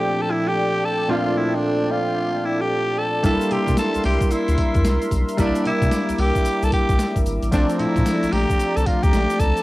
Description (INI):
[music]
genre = R&B, new jack swing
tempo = 112 BPM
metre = 4/4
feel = swing 63% on 16ths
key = unclear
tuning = A4 = 442 Hz
[part]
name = growling tenor saxophone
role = melody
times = 0.0-9.6 s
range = D4 to A4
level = -23 LUFS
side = equal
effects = none
[part]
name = warm analog keys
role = accompaniment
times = 0.0-9.6 s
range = Bb2 to F4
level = -24 LUFS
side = equal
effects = chorus, cassette tape, plate reverb
[part]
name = warm analog pad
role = sustained chords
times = 0.0-9.6 s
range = A3 to D6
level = -27 LUFS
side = equal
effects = chorus, cassette tape, plate reverb
[part]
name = round analog bass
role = bass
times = 3.2-9.5 s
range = G#1 to C3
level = -22 LUFS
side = equal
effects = tube saturation
[part]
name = boom bap sampler-style drum kit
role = drums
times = 3.2-9.6 s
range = hi-hat, kick drum, snare drum, tambourine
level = -22 LUFS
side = equal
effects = overdrive, cassette tape
[part]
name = tube shaker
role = percussion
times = 3.2-9.6 s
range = none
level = -42 LUFS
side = left 5 dB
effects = none
[sound]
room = light reverb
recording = home recording on cassette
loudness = -18 LUFS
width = side -18 dB against mid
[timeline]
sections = 0.0-9.6 A section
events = none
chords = 0.0 Bbmaj7; 3.2 C7; 7.5 Bbmaj7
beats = 0.03 0.56 | 1.10 1.63 2.17 2.71 | 3.24 3.78 4.31 4.85 | 5.38 5.92 6.46 6.99 | 7.53 8.06 8.60 9.13